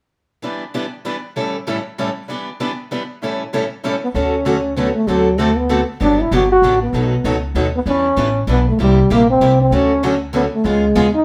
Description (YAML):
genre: acoustic string swing (jazz manouche)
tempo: 194 BPM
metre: 3/4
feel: swing 59% on 8ths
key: D major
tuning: A4 = 441 Hz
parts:
  - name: picked old ladder-braced acoustic guitar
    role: accompaniment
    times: 0.4-11.1 s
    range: A2 to B4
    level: -25 LUFS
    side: equal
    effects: none
  - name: picked steel-string acoustic guitar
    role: accompaniment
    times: 0.4-11.1 s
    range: A2 to A4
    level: -25 LUFS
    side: equal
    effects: none
  - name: breathy trombone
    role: melody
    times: 4.0-11.2 s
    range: F#3 to F#4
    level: -17 LUFS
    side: equal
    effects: none
  - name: upright bass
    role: bass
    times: 4.1-11.2 s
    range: G1 to E2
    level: -22 LUFS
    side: equal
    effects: none
room: moderate studio reverb, RT60 0.8 s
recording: band playing live in one room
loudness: -17 LUFS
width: mono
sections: 0.4-4.1 A section; 4.1-11.2 B section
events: none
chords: 0.4 Em7; 1.4 A7; 2.3 Em7; 3.2 A7; 4.1 Dmaj7; 5.1 D7; 6.0 Gmaj7; 6.9 B7; 7.9 Em7; 8.8 C7; 9.7 Dmaj7; 10.6 C#7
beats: | 0.43 0.74 1.05 | 1.36 1.67 1.98 | 2.29 2.60 2.91 | 3.22 3.53 3.83 | 4.14 4.45 4.76 | 5.07 5.38 5.69 | 6.00 6.31 6.62 | 6.93 7.24 7.55 | 7.86 8.17 8.47 | 8.78 9.09 9.40 | 9.71 10.02 10.33 | 10.64 10.95